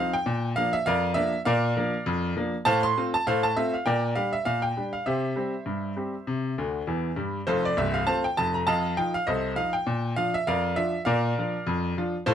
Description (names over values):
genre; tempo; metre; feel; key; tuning
ragtime piano; 100 BPM; 2/4; swing 57% on 16ths; unclear; A4 = 443 Hz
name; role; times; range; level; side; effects
bright baby grand piano; solo; 0.0-12.3 s; C1 to C6; -24 LUFS; equal; none
room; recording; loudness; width
little or no reverb; close, detailed microphones; -24 LUFS; side -9 dB against mid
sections
0.0-12.3 A section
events
grand piano fill 6.6-7.5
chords
0.3 Bb; 2.7 F/A; 3.9 Gm/Bb; 5.1 C; 7.5 F; 8.7 F7; 9.9 Bb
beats
| 0.27 0.87 | 1.47 2.07 | 2.67 3.26 | 3.86 4.46 | 5.06 5.66 | 6.26 6.87 | 7.47 8.07 | 8.67 9.27 | 9.87 10.47 | 11.07 11.67 | 12.27